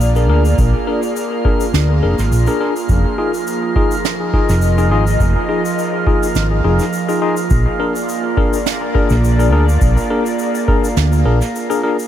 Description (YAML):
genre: ambient dub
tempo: 104 BPM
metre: 4/4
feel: swing 54% on 16ths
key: unclear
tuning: A4 = 440 Hz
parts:
  - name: airy breathy pad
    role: sustained chords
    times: 0.0-12.1 s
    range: F3 to Eb5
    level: -21 LUFS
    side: right 2 dB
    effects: chorus
  - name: hollow-body short-scale fingered electric bass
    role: bass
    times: 0.0-11.4 s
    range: F1 to D2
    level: -13 LUFS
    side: equal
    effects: none
  - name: shaker and snare drum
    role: drums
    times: 0.0-12.1 s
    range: none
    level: -27 LUFS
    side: right 4 dB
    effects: dub echo
  - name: drifting glass-harmonics texture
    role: texture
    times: 0.0-12.1 s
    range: Bb3 to Bb4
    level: -25 LUFS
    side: right 2 dB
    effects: chorus, built-in reverb
  - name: tine electric piano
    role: stabs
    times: 0.2-12.0 s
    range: D4 to Bb4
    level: -20 LUFS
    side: left 4 dB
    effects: fast stereo tremolo, dub echo
  - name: electronic kick drum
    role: drums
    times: 0.6-10.8 s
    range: none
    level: -17 LUFS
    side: equal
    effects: none
room: light reverb, small room reverb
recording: none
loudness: -13 LUFS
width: side -11 dB against mid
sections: 0.0-12.1 A section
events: kick drops out 11.0-12.1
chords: 0.0 Bb7; 2.9 Fm7; 7.5 Bb7